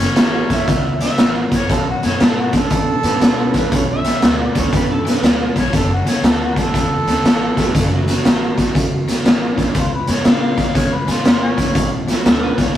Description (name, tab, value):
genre	electric blues shuffle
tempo	119 BPM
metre	4/4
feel	swing 65% on 8ths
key	F# minor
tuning	A4 = 439 Hz
part	mellow harmonica	melody	0.0-11.9 s	C#4 to E#5	-22 LUFS	equal	overdrive
part	raw garage guitar	riff	0.0-12.7 s	F#2 to A#3	-26 LUFS	left 2 dB	overdrive
part	upright bass	bass	0.0-12.8 s	E1 to B2	-26 LUFS	equal	none
part	mellow tonewheel organ	accompaniment	0.2-12.6 s	A3 to B4	-23 LUFS	right 3 dB	slow rotary speaker
part	raw garage drum kit	drums	0.2-12.8 s	hi-hat, kick drum, snare drum	-15 LUFS	equal	none
part	electric slide guitar	second line	0.5-12.8 s	A3 to E5	-24 LUFS	right 2 dB	none
room	light reverb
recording	rough rehearsal-room recording, tube saturation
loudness	-14 LUFS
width	side -11 dB against mid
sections	0.0-12.8 A section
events	none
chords	0.0 F#m9; 1.7 Bm9; 5.7 F#m7; 9.8 C#7b9; 11.8 Bm9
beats	0.18 0.69 1.19 | 1.70 2.20 2.71 3.22 | 3.72 4.22 4.73 5.23 | 5.74 6.24 6.74 7.25 | 7.75 8.25 8.75 9.26 | 9.76 10.26 10.76 11.26 | 11.76 12.26 12.76